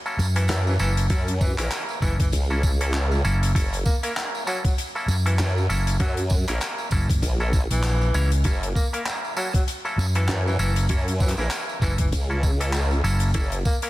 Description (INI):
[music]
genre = glitch hop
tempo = 98 BPM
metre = 4/4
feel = swing 57% on 16ths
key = unclear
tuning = A4 = 441 Hz
[part]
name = swinging big-band drum kit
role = drums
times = 0.0-13.9 s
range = handclaps, hi-hat, rim click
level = -32 LUFS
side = equal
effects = studio reverb
[part]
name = bright clav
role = stabs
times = 0.1-13.9 s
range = A#3 to C#5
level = -30 LUFS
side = equal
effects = auto-wah, sidechain pumping, tape echo
[part]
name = tambourine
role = percussion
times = 0.1-13.9 s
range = none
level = -36 LUFS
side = right 4 dB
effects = none
[part]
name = overdriven fingered electric bass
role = bass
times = 0.2-13.3 s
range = F#1 to F#2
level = -22 LUFS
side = equal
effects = none
[part]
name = breathy tenor saxophone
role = melody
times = 0.4-13.9 s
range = E3 to A#3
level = -33 LUFS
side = left 1 dB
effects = tape echo
[part]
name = formant-sweep wobble bass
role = bass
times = 0.5-13.6 s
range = F#1 to F#2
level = -24 LUFS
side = equal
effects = chorus
[part]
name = electronic kick drum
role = drums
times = 1.1-13.8 s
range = none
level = -22 LUFS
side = equal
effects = studio reverb
[sound]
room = small room ambience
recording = dense, heavily limited modern master, vinyl crackle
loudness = -20 LUFS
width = side -17 dB against mid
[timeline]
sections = 0.0-13.9 A section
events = none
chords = 0.0 F#7#9